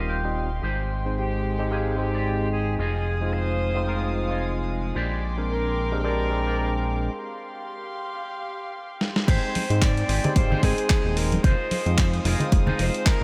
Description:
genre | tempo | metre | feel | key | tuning
nu-disco, nu disco | 111 BPM | 4/4 | swing 56% on 16ths | unclear | A4 = 439 Hz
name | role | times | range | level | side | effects
overdriven tine electric piano | accompaniment | 0.0-13.2 s | G3 to G5 | -32 LUFS | equal | delay
warm studio violin section | sustained chords | 0.0-13.2 s | Ab3 to Eb6 | -37 LUFS | equal | sidechain pumping
electric guitar with an envelope filter | riff | 0.0-13.2 s | Eb4 to G5 | -38 LUFS | equal | lush chorus, low-pass filter, delay
fat analog bass | bass | 0.0-13.2 s | Eb1 to Ab2 | -28 LUFS | equal | none
bright reedy silver concert flute | melody | 1.2-13.2 s | G4 to D5 | -33 LUFS | equal | tape echo
dusty soul sampler-style drum kit | drums | 9.0-13.2 s | crash cymbal, handclaps, hi-hat, snare drum | -31 LUFS | equal | none
electronic kick drum | drums | 9.3-13.2 s | none | -23 LUFS | equal | none
congas | percussion | 9.6-12.8 s | none | -30 LUFS | equal | none
room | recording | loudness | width
moderate lush hall reverb, RT60 2.7 s | dreamy mix soaked in reverb | -24 LUFS | mono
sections
0.0-9.3 A section; 9.3-13.2 B section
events
clean electric guitar fill 0.0-0.6; break 7.1-9.3; drum fill 9.0; drop 9.3-13.2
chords
0.0 Eb69; 0.6 Abmaj7; 2.8 Fm7; 5.0 Bb13; 7.1 G7sus4; 9.3 Abmaj7; 11.4 Fm7

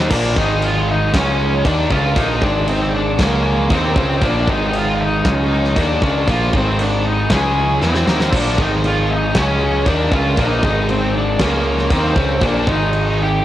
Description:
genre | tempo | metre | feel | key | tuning
quiet-loud alternative rock | 117 BPM | 4/4 | straight | unclear | A4 = 440 Hz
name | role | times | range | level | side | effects
octave-fuzz lead guitar | melody | 0.0-13.4 s | Bb3 to Ab4 | -20 LUFS | left 1 dB | distortion
crunchy overdriven guitar | riff | 0.0-13.4 s | Ab2 to E4 | -22 LUFS | right 5 dB | cassette tape
overdriven semi-hollow guitar | riff | 0.0-13.4 s | Ab2 to E4 | -22 LUFS | left 6 dB | cassette tape
growling picked electric bass | bass | 0.0-13.4 s | Ab1 to E2 | -20 LUFS | equal | overdrive
mellow tonewheel organ | sustained chords | 0.1-13.4 s | Db4 to Eb6 | -29 LUFS | right 1 dB | none
huge arena drum kit | drums | 0.1-13.1 s | crash cymbal, kick drum, snare drum | -20 LUFS | equal | cassette tape
room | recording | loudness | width
light reverb, studio reverb | home recording on cassette | -14 LUFS | side -13 dB against mid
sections
0.1-13.4 A section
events
drum fill 7.8-8.3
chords
0.1 Bb; 0.4 Ab5; 1.1 Db5; 1.7 Bb; 2.4 Ab5; 3.2 Db5; 3.7 Bb; 4.5 Ab5; 5.2 Db5; 5.8 Bb; 6.5 Ab5; 7.3 Db5; 7.8 Bb; 8.6 Ab5; 9.4 Db5; 9.9 Bb; 10.6 Ab5; 11.4 Db5; 11.9 Bb; 12.7 Ab5

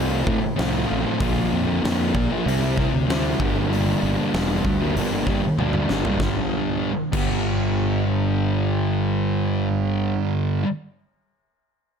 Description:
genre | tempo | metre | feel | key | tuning
quiet-loud alternative rock | 96 BPM | 4/4 | straight | G dorian | A4 = 442 Hz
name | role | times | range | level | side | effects
thick fuzz guitar | riff | 0.0-10.7 s | G2 to F4 | -22 LUFS | equal | distortion
fuzz fingered electric bass | bass | 0.0-10.2 s | E1 to A2 | -25 LUFS | equal | overdrive
huge arena drum kit | drums | 0.3-7.3 s | crash cymbal, hi-hat, kick drum, snare drum, toms | -27 LUFS | equal | none
room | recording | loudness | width
light reverb | none | -20 LUFS | side -7 dB against mid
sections
0.0-6.2 A section; 6.2-8.7 B section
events
drum fill 5.6-6.2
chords
0.0 F; 1.2 Bb; 2.5 C; 3.4 Gm; 6.2 G5

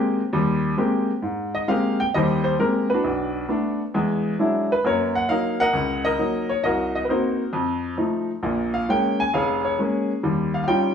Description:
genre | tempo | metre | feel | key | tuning
solo jazz | 133 BPM | 4/4 | swing 67% on 8ths | Ab major | A4 = 441 Hz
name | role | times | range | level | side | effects
bright upright piano | solo | 0.0-10.9 s | F1 to Ab5 | -20 LUFS | left 1 dB | none
room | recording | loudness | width
wet stone room reverb, RT60 1.0 s | band playing live in one room | -20 LUFS | side -7 dB against mid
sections
0.0-1.2 A section; 1.2-10.9 B section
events
upright piano solo 0.0-1.2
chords
0.0 Abmaj9; 3.0 Bm7; 3.9 E9; 4.8 Gb6; 6.6 Cm7b5; 7.5 F7; 8.4 Bbm7; 10.2 Eb9

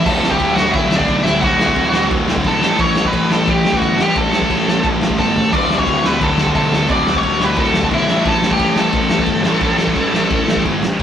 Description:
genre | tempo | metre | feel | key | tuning
punk rock | 176 BPM | 4/4 | straight | D major | A4 = 445 Hz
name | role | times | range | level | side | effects
high-gain lead guitar | melody | 0.0-10.6 s | D4 to D6 | -18 LUFS | equal | distortion
overdriven electric guitar | riff | 0.0-11.0 s | D2 to A3 | -22 LUFS | left 5 dB | none
scooped high-gain guitar | riff | 0.0-11.0 s | D2 to A3 | -23 LUFS | equal | distortion
sludgy distorted guitar | riff | 0.0-11.0 s | D2 to A4 | -23 LUFS | right 4 dB | overdrive
fuzz picked electric bass | bass | 0.1-11.0 s | D1 to B1 | -22 LUFS | equal | overdrive
raw garage drum kit | drums | 0.1-11.0 s | crash cymbal, kick drum, ride cymbal, snare drum, toms | -19 LUFS | equal | none
room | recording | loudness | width
moderate studio reverb, RT60 0.5 s | rough rehearsal-room recording | -13 LUFS | side -9 dB against mid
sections
0.1-11.0 A section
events
drum fill 5.2-5.5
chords
0.1 D; 2.6 A; 5.5 D; 8.1 A

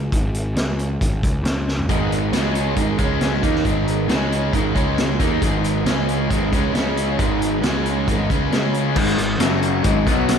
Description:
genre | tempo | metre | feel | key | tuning
classic rock | 136 BPM | 4/4 | straight | G# minor | A4 = 440 Hz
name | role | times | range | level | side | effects
fuzz picked electric bass | bass | 0.0-10.4 s | F#1 to D#2 | -24 LUFS | equal | overdrive
vintage drum kit | drums | 0.1-10.4 s | crash cymbal, hi-hat, kick drum, snare drum, toms | -22 LUFS | equal | none
bright tonewheel organ | sustained chords | 1.9-10.4 s | G#3 to F#5 | -33 LUFS | equal | none
overdriven semi-hollow guitar | riff | 1.9-10.4 s | F#2 to D#4 | -24 LUFS | left 10 dB | slapback echo
overdriven semi-hollow guitar | riff | 1.9-9.0 s | G#2 to D#4 | -23 LUFS | right 10 dB | none
crunchy overdriven guitar | riff | 9.0-10.4 s | F#2 to B3 | -21 LUFS | left 1 dB | none
room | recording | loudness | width
moderate lush hall reverb, RT60 2.2 s | big arena sound | -17 LUFS | side -7 dB against mid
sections
0.0-9.0 A section; 9.0-10.4 B section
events
drum fill 1.7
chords
0.0 N.C.; 1.0 G#sus4; 1.4 N.C.; 1.9 G#m; 2.3 C#5; 2.8 G#5; 3.0 C#5; 3.4 G#m; 4.1 C#5; 4.5 G#5; 4.8 C#5; 5.2 G#m; 5.9 C#5; 6.3 G#m; 6.7 C#5; 7.2 G#m; 7.6 C#5; 8.1 G#m; 8.5 C#5; 9.0 G#m; 9.4 F#5; 9.8 G#5

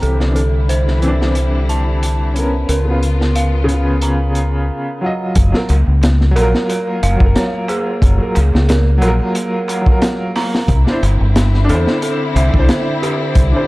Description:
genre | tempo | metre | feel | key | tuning
trip hop | 90 BPM | 4/4 | swing 54% on 16ths | unclear | A4 = 440 Hz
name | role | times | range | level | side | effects
clear upright piano | accompaniment | 0.0-13.7 s | Db3 to Eb5 | -20 LUFS | equal | tremolo, vintage 12-bit sampler grit, tape echo
clear symphonic string section | sustained chords | 0.0-13.7 s | Db3 to F4 | -24 LUFS | left 1 dB | low-pass filter
dark detuned synth bell | arpeggios | 0.0-13.7 s | G4 to Bb5 | -23 LUFS | right 2 dB | chorus, tape echo
deep dub fingered electric bass | bass | 0.0-13.5 s | Gb1 to E2 | -14 LUFS | equal | tube saturation
crunchy breakbeat drum kit | drums | 0.0-13.5 s | hi-hat, kick drum, snare drum | -17 LUFS | equal | high-pass filter on kick, high-pass filter on hats, high-pass filter on snare, high-pass filter on room
darbuka | percussion | 5.4-13.7 s | none | -32 LUFS | right 3 dB | none
room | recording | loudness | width
studio ambience | dark, warm production | -12 LUFS | side -20 dB against mid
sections
0.0-5.4 A section; 5.4-13.7 B section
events
filter sweep on synth bell 0.0-5.4; break 4.7-5.4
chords
0.0 Cadd9; 2.7 Db7; 5.4 Gbmaj7; 10.7 Cadd9

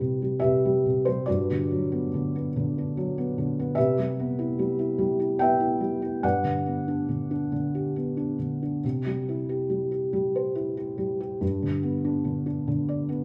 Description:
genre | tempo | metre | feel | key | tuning
classical, lyrical solo piano | 71 BPM | 3/4 | rubato | C lydian | A4 = 436 Hz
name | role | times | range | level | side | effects
felt-muted upright piano | solo | 0.0-13.2 s | G2 to G5 | -27 LUFS | equal | none
room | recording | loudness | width
moderate recital hall reverb, RT60 1.6 s | none | -27 LUFS | mono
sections
0.0-13.2 A section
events
none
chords
0.0 Cmaj7; 1.3 Gmaj7; 3.8 Cmaj7; 6.2 Gmaj7; 8.8 C; 11.4 G

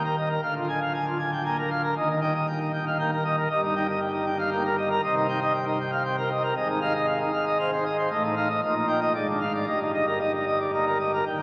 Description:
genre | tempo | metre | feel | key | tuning
classical, organ toccata | 117 BPM | 3/4 | straight | Eb major | A4 = 440 Hz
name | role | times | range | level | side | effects
pipe organ, plenum | solo | 0.0-11.4 s | D1 to Ab5 | -26 LUFS | equal | none
room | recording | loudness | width
wet cathedral reverb, RT60 5.5 s | very old 78 rpm record, vinyl crackle | -26 LUFS | mono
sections
0.0-11.3 A section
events
none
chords
0.4 Bb7/D; 2.0 Eb; 3.5 Eb/G; 5.0 Cm7; 6.6 Fm7/Ab; 8.1 F7/A; 8.6 Eb/Bb; 9.1 Ddim/Ab; 9.7 Eb/G

